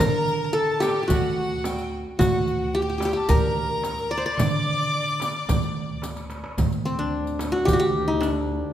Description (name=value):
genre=Arabic maqam ensemble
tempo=110 BPM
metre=4/4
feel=straight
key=D maqam hijaz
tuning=A4 = 440 Hz
part: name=qanun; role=melody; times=0.0-8.7 s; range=C4 to D5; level=-24 LUFS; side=left 1 dB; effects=none
part: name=bright chamber violin section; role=second line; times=0.0-6.0 s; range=F#4 to D5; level=-31 LUFS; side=left 1 dB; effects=none
part: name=warm violin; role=second line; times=0.0-6.0 s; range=F#5 to D6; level=-31 LUFS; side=left 2 dB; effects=none
part: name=upright bass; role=bass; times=0.0-8.6 s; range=D2 to D3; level=-28 LUFS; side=equal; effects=none
part: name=darbuka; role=percussion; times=0.0-8.4 s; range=none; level=-31 LUFS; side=right 4 dB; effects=none
part: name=frame drum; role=percussion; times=0.0-8.3 s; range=none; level=-31 LUFS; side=right 2 dB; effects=none
part: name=riq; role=percussion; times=0.0-8.4 s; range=none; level=-37 LUFS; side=left 3 dB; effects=none
part: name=dark double bass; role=drone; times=6.6-8.7 s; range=D2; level=-33 LUFS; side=equal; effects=none
room=wet scoring stage reverb, RT60 1.6 s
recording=recorded in a church or concert hall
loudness=-21 LUFS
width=side -11 dB against mid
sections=0.0-6.6 A section; 6.6-8.7 B section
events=drum fill 6.0-6.6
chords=none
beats=| 0.00 0.55 1.10 1.64 | 2.19 2.74 3.29 3.83 | 4.38 4.93 5.48 6.02 | 6.57 7.12 7.67 8.21